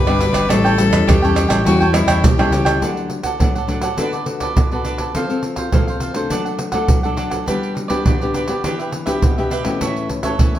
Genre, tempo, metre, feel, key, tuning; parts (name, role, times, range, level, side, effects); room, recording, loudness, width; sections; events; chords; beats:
samba and choro; 103 BPM; 4/4; straight; D major; A4 = 442 Hz
rich fiddle; second line; 0.0-2.8 s; E4 to B4; -21 LUFS; left 5 dB
cavaquinho; accompaniment; 0.0-10.6 s; D4 to G5; -22 LUFS; right 3 dB
nylon-string guitar; accompaniment; 0.0-10.6 s; A2 to A4; -21 LUFS; left 3 dB
overdriven fingered electric bass; bass; 0.0-2.8 s; G1 to E2; -19 LUFS; equal
maracas, pandeiro, tamborim and surdo; percussion; 0.1-10.6 s; -18 LUFS; right 1 dB
moderate large studio reverb, RT60 1.3 s; -15 LUFS; side -12 dB against mid
0.0-2.8 A section; 2.8-10.6 B section
0.5 A7; 2.8 D; 4.0 Bm7/D; 5.1 F; 6.3 D/F#; 7.5 G; 8.6 Em7; 9.8 A
| 0.50 1.08 1.66 2.24 | 2.82 3.40 3.98 4.56 | 5.14 5.72 6.31 6.89 | 7.47 8.06 8.64 9.22 | 9.81 10.39